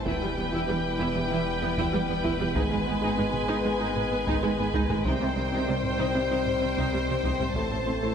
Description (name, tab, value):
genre	cinematic, hybrid orchestral and electronic film score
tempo	96 BPM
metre	4/4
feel	straight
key	unclear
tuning	A4 = 441 Hz
part	mellow French horn section	sustained chords	0.0-8.1 s	B3 to C5	-33 LUFS	left 4 dB	none
part	warm trombone section	sustained chords	0.0-8.1 s	D#3 to A3	-36 LUFS	right 3 dB	none
part	dark detuned saw bass	bass	0.0-8.1 s	E1 to C2	-34 LUFS	equal	none
part	rich symphonic violin section	melody	0.1-8.1 s	G5 to A5	-34 LUFS	left 2 dB	none
part	bright symphonic violin section	second line	0.1-8.1 s	B4 to C5	-33 LUFS	left 3 dB	none
part	rich symphonic viola section	accompaniment	0.1-8.1 s	G3 to E4	-34 LUFS	right 2 dB	none
part	analog pluck	arpeggios	0.1-8.1 s	C3 to A4	-35 LUFS	right 2 dB	none
part	warm symphonic cello section	bass	0.1-8.1 s	E2 to C3	-32 LUFS	right 3 dB	none
part	taiko ensemble	drums	0.1-8.1 s	none	-34 LUFS	equal	none
room	wet concert hall reverb, RT60 2.3 s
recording	none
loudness	-24 LUFS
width	side -7 dB against mid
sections	0.0-8.1 A section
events	none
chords	0.1 Em; 2.6 G#m; 5.1 Cm; 7.6 Am